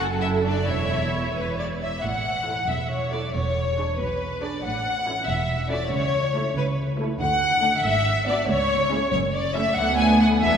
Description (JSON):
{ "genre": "quick classical-period movement for string orchestra", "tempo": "93 BPM (dotted quarters)", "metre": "6/8", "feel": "straight", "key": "A major", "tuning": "A4 = 440 Hz", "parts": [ { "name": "warm symphonic violin section", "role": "melody", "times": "0.0-10.6 s", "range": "D4 to E5", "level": "-34 LUFS", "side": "left 3 dB", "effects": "none" }, { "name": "rich symphonic violin section", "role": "second line", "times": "0.0-10.6 s", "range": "D4 to G#5", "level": "-23 LUFS", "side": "left 2 dB", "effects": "none" }, { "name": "rich symphonic viola section", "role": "accompaniment", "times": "0.0-10.6 s", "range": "G#3 to C#5", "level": "-28 LUFS", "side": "right 1 dB", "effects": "none" }, { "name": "rich symphonic cello section", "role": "bass", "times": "0.0-10.6 s", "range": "C#2 to D3", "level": "-31 LUFS", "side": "right 2 dB", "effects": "none" }, { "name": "rich symphonic double bass section", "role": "bass", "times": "0.0-10.6 s", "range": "E1 to D2", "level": "-28 LUFS", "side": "right 3 dB", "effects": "none" } ], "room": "wet church reverb, RT60 2.8 s", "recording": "minimal, uncompressed stereo recording", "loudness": "-21 LUFS", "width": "side -7 dB against mid", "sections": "0.0-2.0 A section; 2.0-10.6 B section", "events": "none", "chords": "0.0 F#m; 0.7 C#m/E; 2.0 A; 3.3 E7; 4.6 A; 5.9 A/C#; 7.2 D; 7.8 G#m7b5; 8.5 C#m; 9.1 F#m7; 9.8 Bm7/D" }